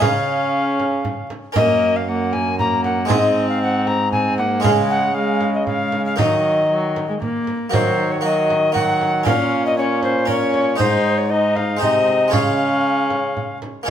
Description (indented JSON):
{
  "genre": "classical, renaissance-style consort dance",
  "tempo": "117 BPM",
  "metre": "3/4",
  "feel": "straight",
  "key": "Eb dorian",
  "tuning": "A4 = 440 Hz",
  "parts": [
    { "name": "alto recorder", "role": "melody", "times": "0.0-13.9 s", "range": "C5 to Bb5", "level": "-20 LUFS", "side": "left 2 dB", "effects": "none" },
    { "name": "harpsichord", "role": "accompaniment", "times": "0.0-13.9 s", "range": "Gb2 to Db5", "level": "-24 LUFS", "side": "right 2 dB", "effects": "none" },
    { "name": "warm viola", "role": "accompaniment", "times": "0.0-13.7 s", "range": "Gb3 to Eb4", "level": "-23 LUFS", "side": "equal", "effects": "none" },
    { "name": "clear trombone", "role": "bass", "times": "0.0-13.9 s", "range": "Gb2 to Eb3", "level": "-24 LUFS", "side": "right 2 dB", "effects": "none" },
    { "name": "frame drum", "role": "percussion", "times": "0.0-13.9 s", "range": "none", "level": "-25 LUFS", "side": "right 2 dB", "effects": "none" }
  ],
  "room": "moderate stone room reverb, RT60 1.1 s",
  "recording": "minimal, uncompressed stereo recording",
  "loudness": "-16 LUFS",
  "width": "side -9 dB against mid",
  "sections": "0.0-7.7 A section; 7.7-13.9 A section",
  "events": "none",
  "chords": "0.0 Db; 1.6 Gb; 3.1 Ab; 4.6 Db5; 6.2 Ebm; 9.3 Bbm; 10.8 Ab; 12.3 Db"
}